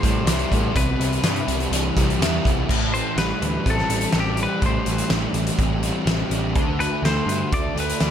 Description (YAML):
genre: rock, shoegaze and dream pop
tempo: 124 BPM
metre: 4/4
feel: straight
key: unclear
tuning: A4 = 440 Hz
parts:
  - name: twelve-string electric guitar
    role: melody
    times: 0.0-8.1 s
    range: G4 to D5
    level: -28 LUFS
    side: left 3 dB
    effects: spring reverb, digital delay
  - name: fuzz guitar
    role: riff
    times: 0.0-8.1 s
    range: A2 to E4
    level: -24 LUFS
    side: equal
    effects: distortion, ensemble chorus
  - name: fuzz picked electric bass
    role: bass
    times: 0.0-8.1 s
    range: A1 to A2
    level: -26 LUFS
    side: equal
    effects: overdrive
  - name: loose indie drum kit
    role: drums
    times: 0.0-8.1 s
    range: crash cymbal, hi-hat, kick drum, snare drum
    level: -23 LUFS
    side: equal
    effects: none
room: little or no reverb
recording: none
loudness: -19 LUFS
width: side -9 dB against mid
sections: 0.0-2.7 A section; 2.7-8.1 B section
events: none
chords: 0.0 Cmaj7; 2.7 Am7; 6.6 D5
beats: 0.26 | 0.74 1.23 1.71 2.19 | 2.68 3.16 3.64 4.13 | 4.61 5.10 5.58 6.07 | 6.55 7.04 7.52 8.01